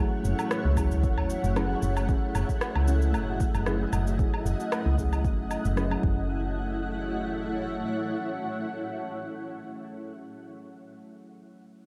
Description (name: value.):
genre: organic downtempo.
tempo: 114 BPM.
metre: 4/4.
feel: swing 54% on 16ths.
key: F# dorian.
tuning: A4 = 440 Hz.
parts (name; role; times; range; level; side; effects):
muted felt-like synth keys; accompaniment; 0.0-11.9 s; F#3 to G#4; -37 LUFS; equal; chorus, sidechain pumping, low-pass filter, diffuse ambient delay.
granular cloud pad; sustained chords; 0.0-9.8 s; A3 to F#5; -35 LUFS; equal; built-in reverb, ensemble chorus, sidechain pumping.
woody FM bass; bass; 0.0-7.8 s; F#1 to C#2; -30 LUFS; equal; sidechain pumping.
electronic cabasa, woodblock and rim click; drums; 0.2-6.0 s; none; -37 LUFS; equal; overdrive.
electronic kick drum; drums; 0.8-6.1 s; none; -30 LUFS; equal; overdrive.
udu; percussion; 0.9-1.3 s; none; -34 LUFS; equal; none.
room: moderate plate reverb, RT60 1.8 s, digital ambience.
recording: dreamy mix soaked in reverb.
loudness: -28 LUFS.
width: mono.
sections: 0.0-6.3 A section; 6.3-10.5 B section.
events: filter sweep on synth keys 0.0-6.3.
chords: 0.0 F#m7.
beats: 0.51 1.03 1.56 | 2.09 2.61 3.14 3.67 | 4.19 4.72 5.25 5.77 | 6.30 6.82 7.35 7.88 | 8.40 8.93 9.46 9.98.